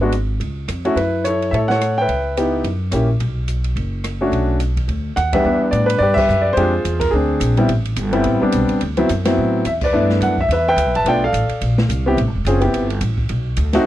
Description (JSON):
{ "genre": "jazz piano trio", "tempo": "214 BPM", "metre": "4/4", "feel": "swing 59% on 8ths", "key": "B minor", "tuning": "A4 = 440 Hz", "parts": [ { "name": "clear baby grand piano", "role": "melody", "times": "0.0-13.8 s", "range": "E2 to A5", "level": "-17 LUFS", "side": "equal", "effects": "none" }, { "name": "upright bass", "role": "bass", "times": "0.0-13.8 s", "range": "E1 to A2", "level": "-20 LUFS", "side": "equal", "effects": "none" }, { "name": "open jazz drum kit", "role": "drums", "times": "0.1-13.8 s", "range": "crash cymbal, hi-hat, kick drum, ride cymbal, rim click, snare drum", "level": "-28 LUFS", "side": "equal", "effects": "none" } ], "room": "studio ambience", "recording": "dry, close 1970s-style studio recording", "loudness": "-15 LUFS", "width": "side -13 dB against mid", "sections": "0.0-5.4 A section; 5.4-13.9 B section", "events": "band accent 5.3, 6.1, 9.8", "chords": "0.4 C#; 1.0 F#m7; 2.1 C#m7b5; 2.6 F#7b9; 3.2 Bm; 5.4 Em7; 6.6 A#13; 7.7 Am9; 8.8 D13; 9.9 G6; 11.0 Bm7b5; 11.6 A#add9; 12.2 Am7; 13.3 N.C.", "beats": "0.13 0.41 0.69 | 0.97 1.25 1.52 1.80 | 2.08 2.36 2.64 2.92 | 3.20 3.48 3.76 4.04 | 4.32 4.60 4.88 5.16 | 5.44 5.72 6.00 6.28 | 6.56 6.84 7.12 7.41 | 7.69 7.97 8.25 8.53 | 8.81 9.09 9.37 9.65 | 9.93 10.21 10.49 10.77 | 11.05 11.33 11.61 11.89 | 12.17 12.45 12.73 13.01 | 13.29 13.57" }